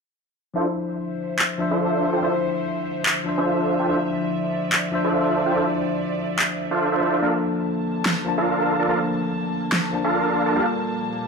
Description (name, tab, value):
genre	future bass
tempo	144 BPM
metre	4/4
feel	swing 54% on 16ths, half-time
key	D minor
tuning	A4 = 441 Hz
part	tine electric piano	accompaniment	0.5-11.3 s	F3 to A5	-25 LUFS	left 3 dB	lush chorus, low-pass filter, dub echo
part	airy breathy pad	sustained chords	0.6-11.3 s	Bb2 to A5	-29 LUFS	right 1 dB	chorus
part	supersaw chords	riff	0.6-10.7 s	D4 to A5	-23 LUFS	right 2 dB	low-pass filter, dub echo
part	electronic handclaps and snare drum	drums	1.4-9.8 s	none	-21 LUFS	equal	none
room	moderate digital room reverb, RT60 1.0 s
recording	none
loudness	-20 LUFS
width	side -4 dB against mid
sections	0.6-11.3 A section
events	none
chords	0.6 Dm9; 7.2 Bbmaj7; 10.6 Gm9/Bb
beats	| 0.56 0.97 1.39 1.81 | 2.22 2.64 3.06 3.47 | 3.89 4.31 4.72 5.14 | 5.56 5.97 6.39 6.81 | 7.22 7.64 8.06 8.47 | 8.89 9.31 9.72 10.14 | 10.56 10.97